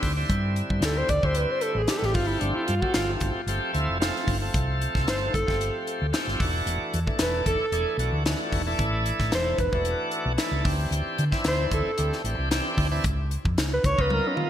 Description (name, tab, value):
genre	electric jazz fusion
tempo	113 BPM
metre	4/4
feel	swing 54% on 16ths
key	D dorian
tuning	A4 = 440 Hz
part	bright tonewheel organ	accompaniment	0.0-14.5 s	D3 to A#4	-29 LUFS	equal	overdrive, slow rotary speaker
part	hollow-body short-scale fingered electric bass	bass	0.0-14.2 s	E1 to D3	-27 LUFS	equal	none
part	crisp fusion drum kit	drums	0.0-14.5 s	hi-hat, kick drum, snare drum, toms	-28 LUFS	equal	gated reverb
part	mellow alto saxophone	melody	0.8-14.5 s	C#4 to D5	-28 LUFS	equal	ping-pong delay
room	moderate lush hall reverb, RT60 2.2 s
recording	bright 1980s-style digital production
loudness	-23 LUFS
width	side -10 dB against mid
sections	0.0-14.5 A section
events	alto saxophone solo 0.0-14.5; drum fill 14.1-14.5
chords	0.0 D9sus4; 2.2 G9sus4; 6.4 E9sus4; 10.7 D9sus4; 13.1 C#13